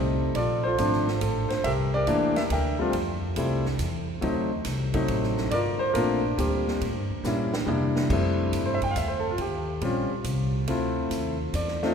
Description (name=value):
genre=jazz piano trio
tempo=139 BPM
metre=3/4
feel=swing 68% on 8ths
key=F major from 8.1 s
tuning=A4 = 445 Hz
part: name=warm concert grand piano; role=melody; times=0.0-11.9 s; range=E3 to G5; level=-26 LUFS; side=left 1 dB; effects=none
part: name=upright bass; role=bass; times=0.0-11.9 s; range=G1 to C3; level=-29 LUFS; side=equal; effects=none
part: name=swinging big-band drum kit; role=drums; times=0.3-11.9 s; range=crash cymbal, hi-hat, kick drum, ride cymbal, snare drum, toms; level=-35 LUFS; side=right 3 dB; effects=none
room=wet church reverb, RT60 3.7 s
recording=recorded in a church or concert hall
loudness=-24 LUFS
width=side -7 dB against mid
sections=0.0-8.1 A section; 8.1-11.9 B section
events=drum fill 7.2-8.1; grand piano solo 8.1-11.9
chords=0.4 Bbmaj9; 1.6 C13; 2.9 Fmaj7; 4.2 D7b9; 5.5 Gm11; 6.8 A7b9; 7.7 C9; 8.1 Fmaj9; 9.4 Eb6; 10.7 Dm7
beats=| 0.35 0.78 1.21 | 1.64 2.08 2.50 | 2.94 3.37 3.80 | 4.23 4.66 5.09 | 5.52 5.95 6.38 | 6.81 7.24 7.67 | 8.10 8.53 8.96 | 9.39 9.82 10.25 | 10.68 11.11 11.54